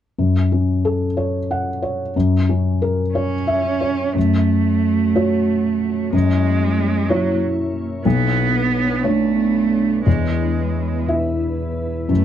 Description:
neoclassical piano and strings; 57-63 BPM (dotted quarters); 6/8; rubato; F# minor; A4 = 440 Hz
felt-muted upright piano; accompaniment; 0.2-12.2 s; B1 to F#5; -18 LUFS; left 2 dB
clear cello; second line; 3.1-12.2 s; F#3 to C#4; -20 LUFS; right 6 dB
glassy FM pad; sustained chords; 4.7-12.2 s; A3 to C#5; -27 LUFS; equal; ensemble chorus, built-in reverb
little or no reverb; dark, warm production; -16 LUFS; side -10 dB against mid
0.2-4.2 A section; 4.2-12.2 B section
0.2 F#m; 2.1 F#7; 4.2 F#m; 6.1 F#7; 8.0 Bmadd9; 10.1 E

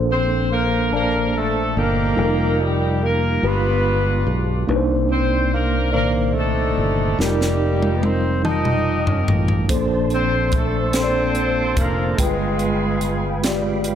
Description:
slow gospel; 48 BPM (dotted quarters); 6/8; straight; Bb major; A4 = 438 Hz
mellow tine electric piano; accompaniment; 0.0-13.9 s; G2 to A5; -22 LUFS; left 1 dB; medium stereo tremolo
mellow French horn section; sustained chords; 0.0-13.9 s; Eb3 to D5; -33 LUFS; left 2 dB
fingered electric bass; bass; 0.0-13.9 s; F1 to C2; -22 LUFS; equal
breathy tenor saxophone; melody; 0.1-13.4 s; G3 to Eb4; -25 LUFS; right 3 dB
clear horn section; melody; 0.1-13.4 s; Bb3 to Eb5; -25 LUFS; left 2 dB; slapback echo
crisp fusion drum kit; drums; 7.2-13.9 s; hi-hat, kick drum, snare drum, toms; -22 LUFS; equal
mellow tonewheel organ; sustained chords; 9.7-13.9 s; Ab3 to C6; -30 LUFS; right 4 dB; fast rotary speaker, chorus vibrato
light reverb; -17 LUFS; side -9 dB against mid
0.0-13.9 A section
drum fill 7.2-9.7
0.0 Bbmaj9; 2.2 F9sus4; 3.4 G7b9; 4.7 Cm9; 7.2 F9sus4; 9.7 Bbmaj9; 12.2 G7b9

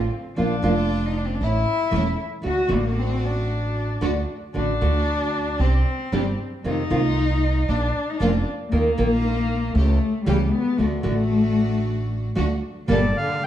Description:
tango; 115 BPM; 4/4; rubato; A4 = 439 Hz
warm cello; second line; 0.0-13.5 s; Bb2 to F#4; -24 LUFS; left 3 dB
rich chamber string section; stabs; 0.0-13.1 s; A3 to A4; -32 LUFS; right 3 dB
upright bass; bass; 0.0-13.1 s; E1 to F2; -23 LUFS; right 1 dB
nylon-string guitar; accompaniment; 0.4-13.0 s; C3 to Bb4; -25 LUFS; right 1 dB
bandoneon; melody; 12.9-13.5 s; D5 to G5; -23 LUFS; equal
wet large studio reverb, RT60 1.4 s; dark, warm production; -20 LUFS; side -11 dB against mid
0.0-12.9 A section
cello solo 0.0-12.9
0.4 Bb; 1.4 A; 2.4 D; 5.6 Csus2; 6.6 F7; 7.7 Bb; 8.7 Ebsus2; 9.7 A7/C#; 10.8 D; 12.9 Gmadd9

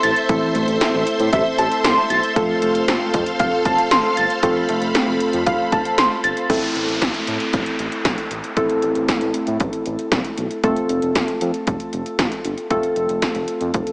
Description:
synth-pop; 116 BPM; 4/4; straight; A minor; A4 = 440 Hz
muted felt-like synth keys; accompaniment; 0.0-13.9 s; A3 to A4; -21 LUFS; equal; chorus, shimmer reverb
string machine, violas; sustained chords; 0.0-6.5 s; A4 to C6; -24 LUFS; equal; ensemble chorus, shimmer reverb
warbly dusty pluck; arpeggios; 0.0-6.4 s; E3 to A6; -20 LUFS; equal; chorus, digital delay, shimmer reverb
smooth synth bass; bass; 0.0-13.8 s; F1 to A2; -26 LUFS; equal
80s electronic pad drums; drums; 0.0-13.9 s; crash cymbal, hi-hat, kick drum, snare drum; -22 LUFS; equal
downlifter; sound effects; 6.5-10.6 s; -27 LUFS; equal
moderate lush hall reverb, RT60 2.1 s; small speaker sound; -17 LUFS; side -27 dB against mid
0.0-6.5 A section; 6.5-13.9 B section
0.0 Am; 2.4 F; 6.5 Am; 10.6 F

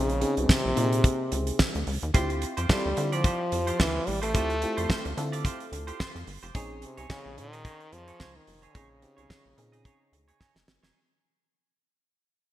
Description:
early-eighties boogie funk; 109 BPM; 4/4; swing 56% on 16ths; A4 = 439 Hz
clear French horn; melody; 0.0-10.7 s; C3 to A3; -31 LUFS; equal
FM electric piano; accompaniment; 0.0-10.4 s; Bb3 to A4; -34 LUFS; equal; chorus
rubbery square bass; bass; 0.0-10.9 s; F1 to D3; -31 LUFS; equal
damped 70s drum kit; drums; 0.1-10.9 s; hi-hat, kick drum, snare drum; -26 LUFS; equal; gated reverb
clean electric guitar; riff; 2.1-11.0 s; Eb4 to Eb5; -37 LUFS; right 3 dB; lush chorus
moderate lush hall reverb, RT60 1.9 s, studio ambience; bright 1980s-style digital production; -24 LUFS; side -14 dB against mid
0.0-11.0 A section
fade-out 0.0-11.0; drum fill 10.4-11.0
0.0 Bbm11; 2.1 Dm11; 6.5 Bbm11

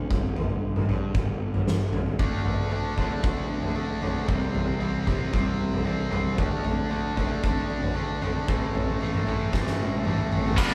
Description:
quiet-loud alternative rock; 115 BPM; 4/4; straight; A4 = 439 Hz
fuzz picked electric bass; bass; 0.0-10.7 s; G1 to C3; -33 LUFS; equal; overdrive
oversized low-tuned drum kit; drums; 0.1-10.7 s; crash cymbal, kick drum, snare drum, toms; -29 LUFS; equal
picked steel-string acoustic guitar; arpeggios; 2.2-10.6 s; A2 to D4; -38 LUFS; equal
biting overdriven guitar; riff; 2.2-10.7 s; G2 to D4; -33 LUFS; equal
biting overdriven guitar; riff; 10.6-10.7 s; G2 to D4; -29 LUFS; equal
high-gain distorted guitar; riff; 10.6-10.7 s; G2 to G3; -30 LUFS; equal; distortion
light reverb; band playing live in one room; -26 LUFS; mono
0.0-10.6 A section
drum fill 9.5-10.6
0.0 N.C.; 2.2 D5; 4.3 C; 6.4 D5; 8.5 A

